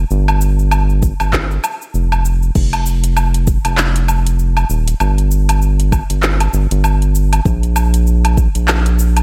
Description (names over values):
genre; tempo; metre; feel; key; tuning
organic downtempo; 98 BPM; 4/4; swing 58% on 16ths; unclear; A4 = 440 Hz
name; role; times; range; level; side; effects
round analog bass; bass; 0.0-9.2 s; Eb1 to Bb1; -16 LUFS; equal; sidechain pumping
deep house drum kit; drums; 0.1-9.2 s; cabasa, crash cymbal, handclaps, hi-hat, woodblock; -22 LUFS; equal; overdrive
electronic kick drum; drums; 1.0-8.5 s; none; -18 LUFS; equal; none
room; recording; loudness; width
little or no reverb; none; -15 LUFS; mono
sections
0.0-9.2 A section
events
none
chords
none